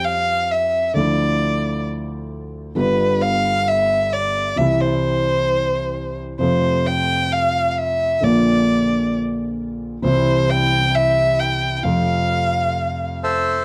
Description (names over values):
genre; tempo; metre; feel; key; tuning
tango; free time; none; none; F major; A4 = 440 Hz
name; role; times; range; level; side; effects
warm violin; second line; 0.0-13.2 s; B4 to G5; -21 LUFS; equal; none
warm grand piano; accompaniment; 0.0-13.6 s; G1 to G4; -23 LUFS; equal; none
bandoneon; melody; 13.2-13.6 s; A4 to E5; -20 LUFS; equal; none
room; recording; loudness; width
light reverb, studio ambience; dry, close 1970s-style studio recording; -19 LUFS; mono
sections
0.0-13.6 A section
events
violin solo 0.0-13.6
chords
0.0 Fsus2; 1.0 Dmadd9; 2.8 G7; 4.6 C; 6.4 F; 8.2 Bb; 10.1 C; 11.9 F